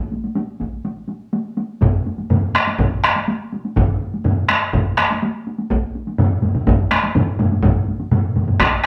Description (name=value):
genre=japanese traditional, taiko drum ensemble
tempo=124 BPM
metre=4/4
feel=straight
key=none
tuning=none
part: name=taiko ensemble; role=percussion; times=0.0-8.7 s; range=none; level=-26 LUFS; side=equal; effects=none
part: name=taiko ensemble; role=percussion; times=0.6-8.7 s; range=none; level=-24 LUFS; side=equal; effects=none
part: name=taiko ensemble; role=percussion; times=1.8-8.9 s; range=none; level=-20 LUFS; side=equal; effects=none
part: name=taiko ensemble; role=percussion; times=1.8-8.9 s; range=none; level=-23 LUFS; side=equal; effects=none
room=wet studio reverb, RT60 0.7 s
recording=band playing live in one room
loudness=-19 LUFS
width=mono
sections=0.0-1.8 A section; 1.8-8.9 B section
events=none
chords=none